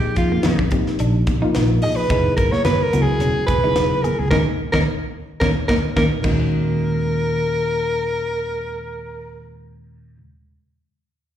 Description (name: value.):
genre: electric jazz fusion.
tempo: 109 BPM.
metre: 4/4.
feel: swing 54% on 16ths.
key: Eb minor.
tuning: A4 = 440 Hz.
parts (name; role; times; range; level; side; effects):
breathy soprano saxophone; melody; 0.0-9.5 s; F4 to Eb5; -22 LUFS; equal; slapback echo.
reed electric piano; accompaniment; 0.0-10.2 s; Bb2 to Ab4; -24 LUFS; left 2 dB; slapback echo.
clean electric guitar; stabs; 0.0-6.6 s; Bb3 to Ab4; -28 LUFS; right 2 dB; wide subtle chorus, slapback echo.
mellow fretless electric bass; bass; 0.0-10.2 s; Fb1 to F2; -22 LUFS; right 1 dB; none.
crisp fusion drum kit; drums; 0.2-6.4 s; crash cymbal, hi-hat, kick drum, snare drum; -24 LUFS; equal; none.
congas; percussion; 0.5-6.8 s; none; -25 LUFS; equal; slapback echo.
room: light reverb.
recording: live gig heard through the venue's PA, recital hall reverb.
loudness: -17 LUFS.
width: side -10 dB against mid.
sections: 0.0-6.5 A section; 6.5-8.7 B section.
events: band accent 4.3-6.5; drum fill 6.0-6.5.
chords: 0.0 Bb13sus4; 2.1 Gb13sus4; 4.3 Eb5; 6.2 Ebm.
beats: 0.45 1.00 1.55 | 2.10 2.66 3.21 3.76 | 4.31 4.87 5.42 5.97 | 6.52 7.07 7.62 8.17.